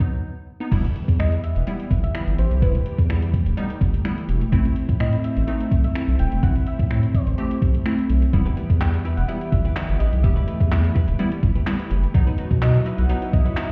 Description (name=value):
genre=dance-pop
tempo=126 BPM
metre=4/4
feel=straight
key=E harmonic minor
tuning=A4 = 440 Hz
part: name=wavetable chord stab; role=accompaniment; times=0.0-13.7 s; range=F#3 to G4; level=-30 LUFS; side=equal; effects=phaser, sidechain pumping
part: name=gated 80s digital drum machine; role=drums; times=0.0-13.7 s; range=crash cymbal, finger snaps, handclaps, hi-hat, kick drum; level=-24 LUFS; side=equal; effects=gated reverb
part: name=lush unison pad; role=sustained chords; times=0.7-13.7 s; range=E3 to G4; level=-33 LUFS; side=equal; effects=chorus, sidechain pumping
part: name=saturated sub bass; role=bass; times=0.7-13.5 s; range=D#1 to B2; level=-22 LUFS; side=equal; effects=sidechain pumping
part: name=soft struck synth lead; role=melody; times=1.2-13.7 s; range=B4 to G5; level=-35 LUFS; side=equal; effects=chorus, digital delay
part: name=direct-recorded clean electric guitar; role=riff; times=8.3-13.7 s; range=D#4 to B4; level=-40 LUFS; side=equal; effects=lush chorus
part: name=swell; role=sound effects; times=12.8-13.7 s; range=none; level=-37 LUFS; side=equal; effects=none
room=little or no reverb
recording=heard muffled through a wall, stone room reverb, EQ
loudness=-21 LUFS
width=mono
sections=0.7-13.7 A section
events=break 0.2-0.7; swell 12.8-13.7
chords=0.0 B; 0.7 Em; 4.5 Am; 8.3 Em; 12.1 B